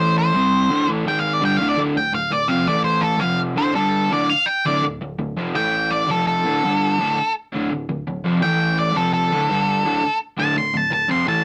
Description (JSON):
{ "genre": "rock", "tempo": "167 BPM", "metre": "4/4", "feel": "straight", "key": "D minor", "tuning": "A4 = 439 Hz", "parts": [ { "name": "octave-fuzz lead guitar", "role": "melody", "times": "0.0-11.4 s", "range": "A4 to C6", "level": "-22 LUFS", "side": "equal", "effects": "distortion" }, { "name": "crunchy overdriven guitar", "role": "riff", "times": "0.0-11.4 s", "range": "D2 to C4", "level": "-23 LUFS", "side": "equal", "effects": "none" } ], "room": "light reverb", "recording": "rough rehearsal-room recording, tube saturation", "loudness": "-20 LUFS", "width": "mono", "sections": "0.0-1.8 A section; 1.8-11.4 B section", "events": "lead electric guitar solo 1.8-11.4", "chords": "0.3 C5; 0.7 D5; 1.1 G#5; 1.4 D5; 1.8 Dm; 2.7 A5; 3.2 F5; 3.6 D5; 3.8 G5; 4.1 Dm; 5.6 A5; 6.1 F5; 6.5 D5; 6.6 G5; 7.0 Dm; 8.4 A5; 9.0 F5; 9.3 D5; 9.5 G5; 9.8 Dm" }